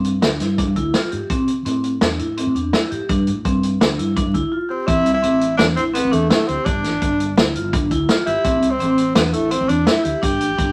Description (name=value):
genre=progressive instrumental, band music in an uneven meter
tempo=168 BPM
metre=5/4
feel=straight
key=A minor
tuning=A4 = 439 Hz
part: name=vibraphone with medium mallets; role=arpeggios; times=0.0-10.7 s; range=C4 to G4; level=-24 LUFS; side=equal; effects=none
part: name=mellow fretless electric bass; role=bass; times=0.0-10.7 s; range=G1 to C3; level=-26 LUFS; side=equal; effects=none
part: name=vintage drum kit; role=drums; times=0.0-10.7 s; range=hi-hat, kick drum, snare drum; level=-22 LUFS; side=equal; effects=none
part: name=clear tenor saxophone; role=melody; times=4.7-10.7 s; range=A3 to G4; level=-23 LUFS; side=equal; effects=none
room=moderate studio reverb, RT60 0.7 s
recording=vinyl crackle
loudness=-19 LUFS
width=mono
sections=0.0-4.9 A section; 4.9-10.7 B section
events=break 4.5-4.9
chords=0.0 G5; 1.3 Am; 3.1 G5; 4.9 Am; 6.7 G5; 8.4 Am